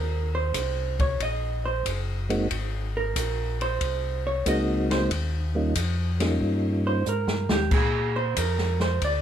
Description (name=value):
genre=soul jazz organ trio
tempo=92 BPM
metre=4/4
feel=swing 69% on 8ths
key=unclear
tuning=A4 = 438 Hz
part: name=vintage hollow-body jazz guitar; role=accompaniment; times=0.0-9.2 s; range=G4 to Eb5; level=-28 LUFS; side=right 3 dB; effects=none
part: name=mellow tonewheel organ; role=bass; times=0.0-9.2 s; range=Gb1 to Bb2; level=-27 LUFS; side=left 1 dB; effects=slow rotary speaker
part: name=open jazz drum kit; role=drums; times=0.5-9.2 s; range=crash cymbal, hi-hat, kick drum, ride cymbal, snare drum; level=-29 LUFS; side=equal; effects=none
part: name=percussive tonewheel organ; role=melody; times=2.3-7.0 s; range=G3 to Gb4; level=-27 LUFS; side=equal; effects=slow rotary speaker, chorus vibrato, plate reverb
room=light reverb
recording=none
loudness=-23 LUFS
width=side -9 dB against mid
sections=0.0-9.2 A section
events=hollow-body jazz guitar solo 0.0-9.2; drum fill 7.1-7.7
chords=0.0 Ab9; 5.1 Eb9; 7.7 Bb9